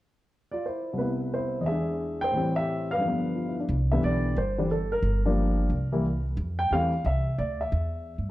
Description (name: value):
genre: jazz piano trio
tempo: 178 BPM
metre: 4/4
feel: swing 64% on 8ths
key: C major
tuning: A4 = 440 Hz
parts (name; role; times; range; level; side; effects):
- dark upright piano; melody; 0.5-8.3 s; C2 to G5; -27 LUFS; equal; none
- upright bass; bass; 3.7-8.3 s; G1 to G2; -27 LUFS; equal; none
room: moderate large studio reverb, RT60 1.4 s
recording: dark, warm production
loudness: -25 LUFS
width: side -16 dB against mid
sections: 1.0-3.7 A section; 3.7-8.3 B section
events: none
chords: 0.0 C; 1.0 Cmaj7; 1.7 E7; 2.3 Am7; 3.0 G7; 3.7 Cmaj7; 5.0 Gm7; 5.7 C7; 6.4 Fmaj7sus2; 7.7 Em